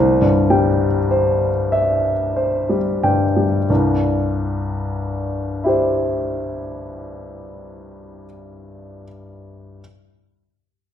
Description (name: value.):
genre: classical.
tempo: 30-35 BPM (dotted quarters).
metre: 6/8.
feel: rubato.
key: C major.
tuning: A4 = 440 Hz.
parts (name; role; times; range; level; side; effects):
warm grand piano; accompaniment; 0.0-9.8 s; C2 to G5; -18 LUFS; left 1 dB; none.
room: moderate recital hall reverb, RT60 1.3 s.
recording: minimal, uncompressed stereo recording.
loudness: -16 LUFS.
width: side -9 dB against mid.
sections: 0.0-3.7 A section; 3.7-7.6 B section.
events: slowing down 0.0-3.7.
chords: 0.0 C.